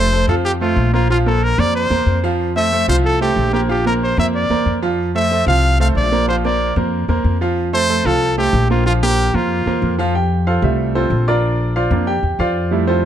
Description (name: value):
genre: latin, salsa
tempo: 186 BPM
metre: 4/4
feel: straight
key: F major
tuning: A4 = 441 Hz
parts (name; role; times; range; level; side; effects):
- brilliant trumpet; melody; 0.0-10.0 s; F4 to F5; -18 LUFS; equal; none
- bright baby grand piano; accompaniment; 0.0-13.1 s; F3 to G5; -19 LUFS; right 3 dB; none
- upright bass; bass; 0.0-13.1 s; F1 to F2; -18 LUFS; left 1 dB; none
room: light reverb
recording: dark, warm production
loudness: -14 LUFS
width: side -10 dB against mid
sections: 0.0-10.1 A section; 10.1-13.1 B section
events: grand piano solo 10.1-13.1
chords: 0.0 F; 1.1 Bbsus2; 2.4 Fmaj7; 3.7 Bbadd9; 5.0 Fmaj7; 6.3 Bbadd9; 7.6 F; 8.9 Bbsus2; 10.1 Fmaj7; 11.4 Bbadd9